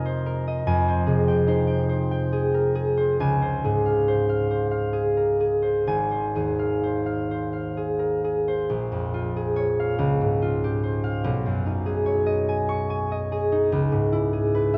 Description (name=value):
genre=classical, solo harp piece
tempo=42-49 BPM (dotted quarters)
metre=6/8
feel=rubato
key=unclear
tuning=A4 = 441 Hz
part: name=concert harp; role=solo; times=0.0-14.8 s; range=Ab1 to C#6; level=-24 LUFS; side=equal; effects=none
room=wet church reverb, RT60 3.1 s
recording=worn, warbling old tape, cassette tape, warbly pitch drift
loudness=-24 LUFS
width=mono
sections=0.0-8.7 A section; 8.7-14.8 B section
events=none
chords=0.0 Fm11; 3.2 Dbmaj7; 5.9 Ab6; 8.7 Bbm7; 10.0 Dbmaj7#11; 11.2 B69; 13.7 Dbm7